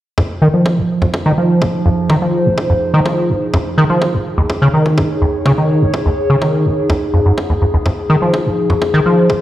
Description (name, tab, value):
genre	acid house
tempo	125 BPM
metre	4/4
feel	straight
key	F minor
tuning	A4 = 441 Hz
part	liquid acid bass	riff	0.2-9.3 s	Eb2 to F3	-13 LUFS	equal	chorus, tube saturation, sidechain pumping, tape echo
part	electronic kick drum	drums	0.2-9.4 s	none	-21 LUFS	equal	high-pass filter on kick
part	warbly tape-like pad	texture	0.8-9.4 s	F3 to Db5	-18 LUFS	equal	chorus, built-in reverb, sidechain pumping
room	moderate lush hall reverb, RT60 2.1 s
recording	played on a big sound system in a bare room, stone room reverb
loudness	-12 LUFS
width	side -14 dB against mid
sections	0.2-9.4 A section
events	filter sweep on acid bass 0.2-9.4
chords	0.2 Fm7; 4.0 Eb7(no3); 7.9 Fm7